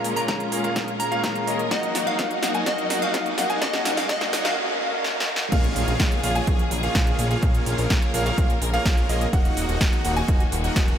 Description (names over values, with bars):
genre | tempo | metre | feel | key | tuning
EDM, festival progressive house | 126 BPM | 4/4 | straight | Bb minor | A4 = 441 Hz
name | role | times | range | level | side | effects
plucky unison lead | melody | 0.0-4.5 s | Eb5 to Bb5 | -28 LUFS | equal | diffuse ambient delay
direct-recorded clean electric guitar | accompaniment | 0.0-4.6 s | Bb2 to Gb4 | -34 LUFS | left 2 dB | lush chorus, sidechain pumping, diffuse ambient delay
bright studio string section | sustained chords | 0.0-11.0 s | Db3 to Bb4 | -31 LUFS | left 1 dB | sidechain pumping
clear concert grand piano | arpeggios | 0.0-11.0 s | Eb5 to Ab5 | -31 LUFS | equal | sidechain pumping, low-pass filter, diffuse ambient delay
supersaw chords | riff | 0.0-11.0 s | Bb3 to Ab5 | -29 LUFS | equal | sidechain pumping, low-pass filter, diffuse ambient delay
big-room dance drum kit | drums | 0.0-11.0 s | crash cymbal, hi-hat, snare drum | -28 LUFS | equal | none
riser, swell and impact | sound effects | 0.3-7.4 s | none | -37 LUFS | right 1 dB | none
electronic kick drum | drums | 0.3-10.9 s | none | -22 LUFS | equal | high-pass filter on kick, high-pass filter on room
fat analog bass | bass | 5.5-10.9 s | Eb1 to Bb1 | -26 LUFS | equal | sidechain pumping
room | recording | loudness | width
wet huge ambient reverb, RT60 8.5 s | dreamy mix soaked in reverb, high-pass filter | -20 LUFS | side -9 dB against mid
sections
0.0-5.5 A section; 5.5-11.0 B section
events
build-up 0.0-5.5; drum fill 0.0-4.6, 5.0-5.5; filter sweep on supersaw synth 0.0-5.5; filter sweep on grand piano 0.0-5.5; swell 4.6-5.5; drop 5.5-11.0; impact 5.5-7.4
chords
0.0 Bbm7; 1.7 Ebm; 5.5 Bbm7; 9.3 Ebm